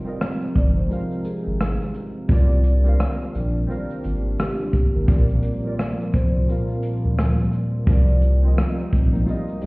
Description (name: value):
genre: lo-fi hip hop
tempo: 86 BPM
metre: 4/4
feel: swing 60% on 16ths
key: C minor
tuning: A4 = 439 Hz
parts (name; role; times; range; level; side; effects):
- warbly lo-fi synth keys; accompaniment; 0.0-9.7 s; Bb2 to F5; -26 LUFS; equal; chorus, phaser, cassette tape, low-pass filter
- hollow soft pad; sustained chords; 0.0-9.7 s; C3 to F4; -30 LUFS; equal; chorus, low-pass filter
- vintage brush drum kit; drums; 0.2-9.7 s; hi-hat, kick drum, rim click, shaker; -21 LUFS; equal; none
- vibraphone with soft mallets; melody; 0.6-7.5 s; G4 to D5; -33 LUFS; equal; low-pass filter, analog delay
- saturated sub bass; bass; 0.6-9.7 s; G1 to D2; -19 LUFS; equal; none
- flamenco guitar; second line; 9.1-9.7 s; Bb3 to G4; -30 LUFS; equal; low-pass filter, analog delay
room: light reverb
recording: heard muffled through a wall, stone room reverb, vinyl crackle, EQ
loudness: -18 LUFS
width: side -26 dB against mid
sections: 0.0-9.7 A section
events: none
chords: 0.0 Fm7; 2.3 Cm9; 5.1 Gm7/Bb; 7.9 Cm9